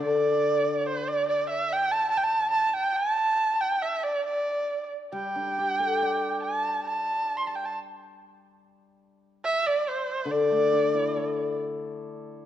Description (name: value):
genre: chinese traditional, Chinese chamber ensemble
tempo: 70 BPM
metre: 2/4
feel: rubato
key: D shang mode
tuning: A4 = 440 Hz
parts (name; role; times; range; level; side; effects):
- warm erhu; melody; 0.0-11.6 s; C5 to C6; -25 LUFS; right 2 dB; none
- hammered dulcimer; accompaniment; 0.0-2.5, 5.1-12.5 s; D3 to D5; -28 LUFS; left 4 dB; none
room: moderate concert hall reverb, RT60 2.3 s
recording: dark, warm production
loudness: -24 LUFS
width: side -11 dB against mid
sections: 0.0-12.0 A section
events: none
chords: none